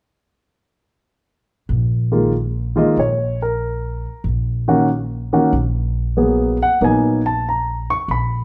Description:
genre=jazz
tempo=94 BPM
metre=4/4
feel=swing 67% on 8ths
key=unclear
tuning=A4 = 440 Hz
part: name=upright bass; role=bass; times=1.7-8.4 s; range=Bb1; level=-24 LUFS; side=equal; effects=none
part: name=warm concert grand piano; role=melody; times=2.1-8.4 s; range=Eb3 to Db6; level=-19 LUFS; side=equal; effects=none
room=wet large studio reverb, RT60 0.9 s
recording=band playing live in one room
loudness=-19 LUFS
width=mono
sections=1.1-8.4 A section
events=none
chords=1.1 Bbsus4

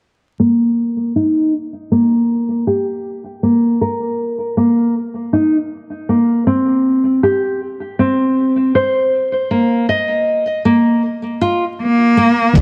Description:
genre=trip hop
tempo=79 BPM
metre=4/4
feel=straight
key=unclear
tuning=A4 = 441 Hz
part: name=nylon-string guitar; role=arpeggios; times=0.4-12.5 s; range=Bb3 to Eb5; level=-16 LUFS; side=equal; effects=low-pass filter, digital delay
part: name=rich cello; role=melody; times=11.8-12.6 s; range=Bb3 to D4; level=-14 LUFS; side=equal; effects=none
part: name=tine electric piano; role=accompaniment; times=12.5-12.6 s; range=Eb3 to D4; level=-15 LUFS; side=equal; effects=tremolo
part: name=upright bass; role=bass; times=12.6 s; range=C2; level=-14 LUFS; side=equal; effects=none
part: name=trip hop sampler-style drum kit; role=drums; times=12.6 s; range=hi-hat, kick drum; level=-15 LUFS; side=equal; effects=none
room=moderate echo chamber reverb, RT60 2.1 s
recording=dark, warm production, vinyl crackle, low-pass filter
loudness=-16 LUFS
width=mono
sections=0.4-12.6 A section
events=filter sweep on nylon-string guitar 0.4-12.6; filter sweep 0.4-12.6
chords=0.4 N.C.; 6.5 C5; 9.5 Bbsus4

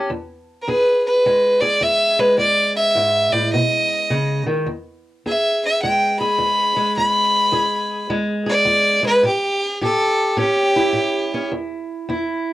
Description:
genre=acoustic country blues, solo or duo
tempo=105 BPM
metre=4/4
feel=swing 65% on 8ths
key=E mixolydian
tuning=A4 = 441 Hz
part: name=fingerpicked steel-string acoustic guitar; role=accompaniment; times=0.0-12.5 s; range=E2 to G#4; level=-22 LUFS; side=equal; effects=cassette tape
part: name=bright fiddle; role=melody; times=0.6-11.5 s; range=G4 to B5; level=-16 LUFS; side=equal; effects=none
room=moderate studio ambience, RT60 0.5 s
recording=home recording on cassette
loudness=-16 LUFS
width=side -15 dB against mid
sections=0.0-4.7 A section; 4.7-12.5 B section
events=fiddle solo 4.7-12.5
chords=0.1 E; 3.5 B; 4.7 E; 9.2 A7; 11.5 N.C.

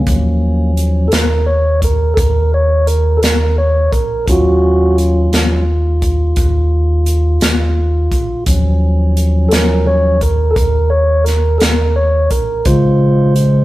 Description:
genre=slow blues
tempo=57 BPM (dotted quarters)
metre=12/8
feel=straight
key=unclear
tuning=A4 = 440 Hz
part: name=mellow tonewheel organ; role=sustained chords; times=0.0-13.6 s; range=Db3 to Db5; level=-14 LUFS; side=equal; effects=none
part: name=pure sine sub bass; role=bass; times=0.0-13.6 s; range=Bb1 to Eb2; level=-14 LUFS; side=equal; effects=none
part: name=natural country drum kit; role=drums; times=0.1-13.5 s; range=hi-hat, kick drum, snare drum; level=-17 LUFS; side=equal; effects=none
room=moderate stone room reverb, RT60 1.1 s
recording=rough rehearsal-room recording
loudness=-11 LUFS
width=side -17 dB against mid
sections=0.0-13.6 A section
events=tonewheel organ solo 0.0-13.6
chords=0.1 Ebm7; 12.7 Bbm7

